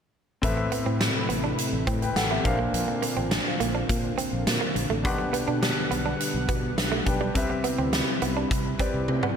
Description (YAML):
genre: 1980s-style pop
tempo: 104 BPM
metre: 4/4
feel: straight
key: unclear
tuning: A4 = 440 Hz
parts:
  - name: clear concert grand piano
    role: accompaniment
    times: 0.4-9.4 s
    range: A2 to G5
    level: -30 LUFS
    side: left 2 dB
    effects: none
  - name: lush unison pad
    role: sustained chords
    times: 0.4-9.4 s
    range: C3 to F#5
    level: -31 LUFS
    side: equal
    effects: chorus
  - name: fingered electric bass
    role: bass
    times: 0.4-9.2 s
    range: A1 to C3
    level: -30 LUFS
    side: equal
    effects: none
  - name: big rock drum kit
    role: drums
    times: 0.4-9.4 s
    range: hi-hat, kick drum, snare drum, toms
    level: -28 LUFS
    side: equal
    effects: gated reverb
  - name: direct-recorded clean electric guitar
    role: riff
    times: 0.6-9.4 s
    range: G3 to D4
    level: -32 LUFS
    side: right 8 dB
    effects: wide subtle chorus, ping-pong delay
room: light reverb, small room ambience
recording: none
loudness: -23 LUFS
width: side -7 dB against mid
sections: 0.4-9.4 A section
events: drum fill 9.1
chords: 0.4 Amadd9; 2.5 Bbadd9; 5.0 Gmaj7/B; 7.4 Cmaj7